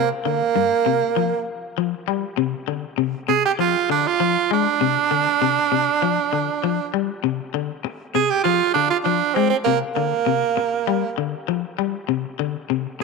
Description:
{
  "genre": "afrobeat",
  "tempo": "99 BPM",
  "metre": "4/4",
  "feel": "straight",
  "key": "unclear",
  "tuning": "A4 = 440 Hz",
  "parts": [
    { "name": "raspy tenor saxophone", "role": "melody", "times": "0.0-11.1 s", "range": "Bb3 to Ab4", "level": "-19 LUFS", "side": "right 8 dB", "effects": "none" },
    { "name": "electric guitar at the edge of break-up", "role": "arpeggios", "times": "0.0-13.0 s", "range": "G2 to Ab3", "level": "-23 LUFS", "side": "left 15 dB", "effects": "none" }
  ],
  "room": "wet spring reverb, RT60 2.7 s",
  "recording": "1960s-style stereo with parts hard left and right",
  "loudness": "-19 LUFS",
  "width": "side -3 dB against mid",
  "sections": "0.0-13.0 A section",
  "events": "none",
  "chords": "0.0 Gmadd11; 2.4 Csus24; 9.7 C9sus4; 12.1 F5/C (rootless)"
}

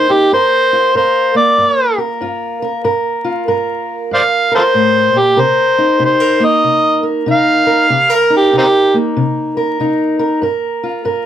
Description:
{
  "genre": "acoustic country blues, solo or duo",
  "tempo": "95 BPM",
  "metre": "4/4",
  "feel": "swing 63% on 8ths",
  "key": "G minor",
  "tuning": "A4 = 440 Hz",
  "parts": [
    { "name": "overdriven harmonica", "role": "melody", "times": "0.0-8.9 s", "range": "C4 to F5", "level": "-10 LUFS", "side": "equal", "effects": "none" },
    { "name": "fingerpicked steel-string acoustic guitar", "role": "accompaniment", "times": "0.0-11.3 s", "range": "G2 to Bb4", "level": "-16 LUFS", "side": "equal", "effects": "none" }
  ],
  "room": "light reverb",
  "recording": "vinyl crackle",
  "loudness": "-11 LUFS",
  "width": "side -10 dB against mid",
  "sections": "0.0-11.3 A section",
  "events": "none",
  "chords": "0.3 Gm7; 5.4 Cm7; 10.4 Gm7"
}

